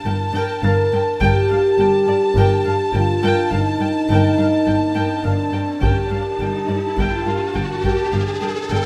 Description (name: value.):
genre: cinematic, suspense film score.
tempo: 52 BPM.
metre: 4/4.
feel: straight.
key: G minor.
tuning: A4 = 441 Hz.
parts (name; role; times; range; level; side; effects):
warm chamber violin section; melody; 0.0-8.9 s; A5; -29 LUFS; equal; none.
dark French horn section; sustained chords; 0.0-8.9 s; D4 to Bb4; -22 LUFS; equal; none.
glass harmonica; sustained chords; 0.0-8.9 s; D4 to A5; -32 LUFS; equal; none.
bright grand piano; texture; 0.0-8.9 s; Bb4 to A6; -35 LUFS; equal; none.
warm chamber viola section; accompaniment; 0.1-8.9 s; Bb4 to G5; -28 LUFS; equal; none.
folk marimba with medium mallets; riff; 0.1-8.9 s; G2 to G3; -30 LUFS; equal; none.
clear chamber double bass section; bass; 0.1-8.8 s; G1; -25 LUFS; equal; none.
warm chamber cello section; bass; 0.1-8.8 s; G2; -27 LUFS; equal; none.
taiko ensemble; drums; 1.2-8.9 s; none; -27 LUFS; equal; none.
riser; sound effects; 3.7-8.9 s; none; -31 LUFS; equal; none.
room: moderate scoring stage reverb, RT60 1.7 s.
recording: none.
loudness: -18 LUFS.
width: mono.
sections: 0.0-8.9 A section.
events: riser 3.7-8.9.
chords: 0.0 Gmadd9.